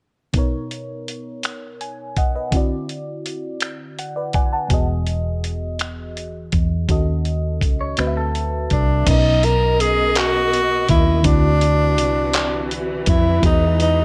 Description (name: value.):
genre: slow six-eight R&B.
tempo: 55 BPM (dotted quarters).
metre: 6/8.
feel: straight.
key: unclear.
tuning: A4 = 443 Hz.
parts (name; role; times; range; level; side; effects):
mellow FM electric piano; accompaniment; 0.3-14.0 s; B2 to A5; -28 LUFS; equal; chorus, phaser.
dusty soul sampler-style drum kit; drums; 0.3-14.0 s; crash cymbal, finger snaps, handclaps, hi-hat, kick drum; -23 LUFS; equal; none.
vintage muted fingered electric bass; bass; 4.7-14.0 s; E1 to E#2; -23 LUFS; equal; none.
clean electric guitar; second line; 7.8-9.0 s; A4 to C#5; -31 LUFS; equal; none.
breathy tenor saxophone; melody; 8.7-14.0 s; D4 to A#4; -21 LUFS; equal; none.
dark studio string section; sustained chords; 9.1-14.0 s; B2 to D#5; -29 LUFS; equal; none.
room: light reverb.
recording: none.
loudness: -19 LUFS.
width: mono.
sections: 0.3-9.1 A section; 9.1-14.0 B section.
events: FM electric piano fill 3.6-4.7.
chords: 0.3 Bmaj7; 2.5 D9; 4.7 Emaj7; 6.9 D#m7b5; 8.0 D13; 9.1 Bmaj7; 11.3 D9; 13.4 Emaj7.